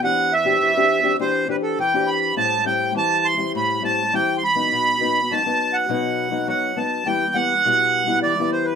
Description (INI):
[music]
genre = samba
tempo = 102 BPM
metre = 4/4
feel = straight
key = E minor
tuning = A4 = 439 Hz
[part]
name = accordion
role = melody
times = 0.0-8.8 s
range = A4 to C6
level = -19 LUFS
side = right 3 dB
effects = none
[part]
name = nylon-string guitar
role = accompaniment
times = 0.0-8.8 s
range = A2 to G4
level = -23 LUFS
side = left 4 dB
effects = none
[sound]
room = wet studio ambience, RT60 0.5 s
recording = minimal, uncompressed stereo recording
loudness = -17 LUFS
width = side -7 dB against mid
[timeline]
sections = 0.0-8.8 A section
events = none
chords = 0.0 Cadd9/E; 2.4 Am7; 4.7 B; 7.1 Em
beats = | 0.02 0.61 1.20 1.79 | 2.38 2.96 3.55 4.14 | 4.72 5.31 5.90 6.48 | 7.07 7.66 8.24